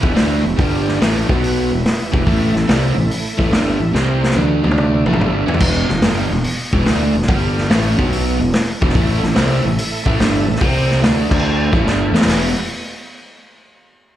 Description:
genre	blues rock power trio and southern rock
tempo	144 BPM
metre	4/4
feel	swing 68% on 8ths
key	E minor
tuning	A4 = 441 Hz
part	overdriven tonewheel organ	sustained chords	0.0-5.6, 8.9-12.6 s	A3 to G5	-27 LUFS	right 2 dB	slow rotary speaker, chorus vibrato
part	crunchy overdriven guitar	riff	0.0-12.5 s	E2 to E4	-19 LUFS	equal	slapback echo
part	fuzz fingered electric bass	bass	0.0-12.5 s	E1 to E2	-18 LUFS	equal	overdrive
part	vintage drum kit	drums	0.0-12.4 s	crash cymbal, hi-hat, kick drum, snare drum, toms	-18 LUFS	equal	none
room	light reverb, small room reverb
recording	live gig heard through the venue's PA, club reverb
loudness	-13 LUFS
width	side -12 dB against mid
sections	0.0-5.6 A section; 5.6-12.3 A section; 12.3-13.9 B section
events	drum fill 3.9-5.6, 11.9-12.3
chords	0.0 Em; 0.6 G5; 1.0 A5; 1.2 B5; 1.6 Em; 2.3 A5; 3.9 C5; 4.4 D5; 5.0 A5; 5.6 Em; 7.3 G5; 7.7 A5; 7.9 B5; 8.3 E5; 8.9 A5; 10.6 C5; 11.0 D5; 11.7 A5; 12.3 Em

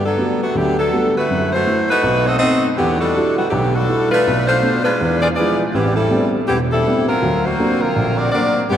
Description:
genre	jazz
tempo	162 BPM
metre	4/4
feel	swing 63% on 8ths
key	unclear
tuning	A4 = 439 Hz
part	clear saxophone section	melody	0.0-8.8 s	D3 to D#5	-16 LUFS	equal	none
part	warm upright piano	accompaniment	0.0-8.8 s	E1 to F#4	-18 LUFS	right 1 dB	none
room	wet cathedral reverb, RT60 5.6 s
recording	in a vast, echoing space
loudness	-14 LUFS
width	side -10 dB against mid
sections	0.0-8.8 A section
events	none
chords	0.0 Gmaj9; 1.3 F#m7b5; 2.0 B7b9; 2.8 Em9; 4.3 Bm7b5; 5.0 E7b9; 5.7 Am11; 7.2 D7alt

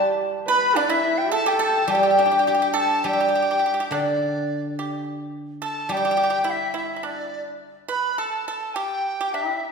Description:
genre	chinese traditional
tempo	105 BPM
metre	2/4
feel	rubato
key	G gong mode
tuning	A4 = 439 Hz
part	large dizi	melody	0.0-9.7 s	D5 to B5	-24 LUFS	left 1 dB	none
part	pipa	second line	0.0-9.7 s	D4 to B4	-28 LUFS	right 5 dB	none
part	reedy large dizi	second line	0.0-2.7 s	D5 to B5	-24 LUFS	left 4 dB	none
part	warm horsehead fiddle	second line	0.0-2.7 s	D4 to B4	-26 LUFS	right 1 dB	none
part	guzheng	accompaniment	0.0-7.6 s	D3 to G4	-24 LUFS	right 1 dB	none
room	wet scoring stage reverb, RT60 1.8 s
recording	recorded in a church or concert hall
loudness	-20 LUFS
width	side -5 dB against mid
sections	0.0-3.1 A section; 3.1-9.7 B section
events	none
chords	none

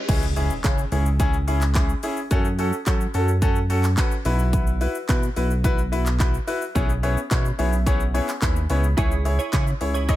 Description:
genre	dance-pop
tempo	108 BPM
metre	4/4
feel	straight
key	C# minor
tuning	A4 = 440 Hz
part	riser and impact	sound effects	0.0-2.3 s	none	-35 LUFS	equal	none
part	clear baby grand piano	accompaniment	0.1-10.2 s	B3 to B5	-26 LUFS	left 2 dB	sidechain pumping, tape echo
part	chorused synth bass	bass	0.1-10.2 s	B1 to F#3	-22 LUFS	equal	sidechain pumping
part	pop drum kit	drums	0.1-10.2 s	crash cymbal, handclaps, hi-hat, kick drum, shaker	-23 LUFS	equal	none
part	direct-recorded clean electric guitar	riff	9.0-10.2 s	E4 to C#5	-29 LUFS	right 7 dB	analog chorus
room	little or no reverb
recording	echo-heavy mix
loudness	-19 LUFS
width	side -14 dB against mid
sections	0.1-10.2 A section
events	impact 0.1-2.3; grand piano fill 7.3-9.0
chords	0.1 C#m; 2.3 F#m; 4.3 Bsus4; 6.8 E6/B; 9.0 C#m

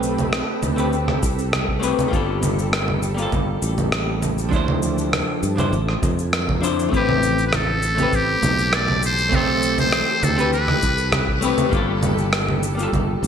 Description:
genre	sunset chillout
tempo	100 BPM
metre	4/4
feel	straight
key	A minor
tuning	A4 = 440 Hz
part	vintage hollow-body jazz guitar	accompaniment	0.0-13.3 s	F3 to C5	-24 LUFS	moving between left 7 dB and right 5 dB	auto-pan, ping-pong delay
part	shimmering ambient pad	sustained chords	0.0-13.3 s	D3 to B4	-29 LUFS	equal	chorus, built-in reverb
part	sustaining fretless electric bass	bass	0.0-13.3 s	G1 to G2	-24 LUFS	equal	none
part	electronic shaker, congas and rim click	drums	0.0-13.3 s	none	-23 LUFS	right 1 dB	gated reverb
part	electronic kick drum	drums	1.2-13.1 s	none	-25 LUFS	equal	none
part	trumpet with metal mute	melody	7.0-11.4 s	G4 to D5	-22 LUFS	equal	vintage 12-bit sampler grit, digital delay
room	moderate plate reverb, RT60 1.4 s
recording	bright 1980s-style digital production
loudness	-18 LUFS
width	side -8 dB against mid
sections	0.0-13.3 A section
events	none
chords	0.0 Am9; 2.1 Gm9; 4.5 Dm9; 6.9 Am9; 11.7 Gm9

